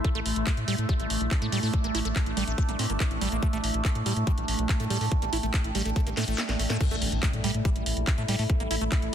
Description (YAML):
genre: psychedelic trance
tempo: 142 BPM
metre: 4/4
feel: straight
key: unclear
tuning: A4 = 440 Hz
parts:
  - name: overtone-sweeping drone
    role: sustained chords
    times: 0.0-9.1 s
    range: A3 to E4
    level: -33 LUFS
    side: right 4 dB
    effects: chorus, built-in reverb, sidechain pumping
  - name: liquid acid bass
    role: riff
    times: 0.0-8.8 s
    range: G3 to E4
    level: -34 LUFS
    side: right 2 dB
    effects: phaser, auto-pan, sidechain pumping, dub echo
  - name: electronic kick drum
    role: drums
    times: 0.0-9.0 s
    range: none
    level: -26 LUFS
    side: equal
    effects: none
  - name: garage drum kit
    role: drums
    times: 0.0-9.1 s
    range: crash cymbal, handclaps, hi-hat, snare drum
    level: -32 LUFS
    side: equal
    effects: none
  - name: ethereal airy pad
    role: texture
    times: 0.0-6.8 s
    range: A3 to C6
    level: -37 LUFS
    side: left 2 dB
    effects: ensemble chorus, built-in reverb, sidechain pumping
  - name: round analog bass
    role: bass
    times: 0.2-9.1 s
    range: G1 to A2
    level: -30 LUFS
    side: equal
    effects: tube saturation
  - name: impact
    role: sound effects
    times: 6.9-8.5 s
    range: none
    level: -38 LUFS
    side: equal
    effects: none
room: light reverb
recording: dense, heavily limited modern master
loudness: -24 LUFS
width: side -9 dB against mid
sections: 0.0-6.8 A section; 6.8-9.1 B section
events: drum fill 6.2-6.8; kick drops out 6.4-6.8; drop 6.8-9.1; impact 6.8-8.5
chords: 0.0 A5